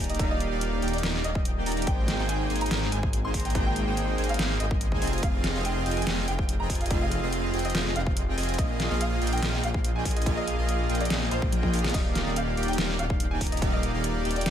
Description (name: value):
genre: future bass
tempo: 143 BPM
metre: 4/4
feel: half-time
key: Eb major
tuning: A4 = 440 Hz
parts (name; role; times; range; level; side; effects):
- bright grand piano; melody; 0.0-14.5 s; C5 to C6; -36 LUFS; equal; sidechain pumping, ping-pong delay
- soft supersaw; riff; 0.0-14.5 s; Bb3 to Bb5; -30 LUFS; right 1 dB; sidechain pumping
- wide detuned saw bass; bass; 0.0-14.5 s; Eb1 to Bb1; -29 LUFS; equal; chorus, sidechain pumping
- dubstep drum kit; drums; 0.0-14.5 s; crash cymbal, hi-hat, snare drum, toms; -31 LUFS; equal; overdrive
- electronic kick drum; drums; 0.2-13.7 s; none; -28 LUFS; equal; overdrive
room: digital ambience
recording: none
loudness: -24 LUFS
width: side -9 dB against mid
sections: 0.0-14.5 A section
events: drum fill 11.5-11.9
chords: 0.0 Ebmaj9; 1.9 Abmaj9; 5.0 Fm7; 8.6 Bb7sus4; 11.9 Ebmaj9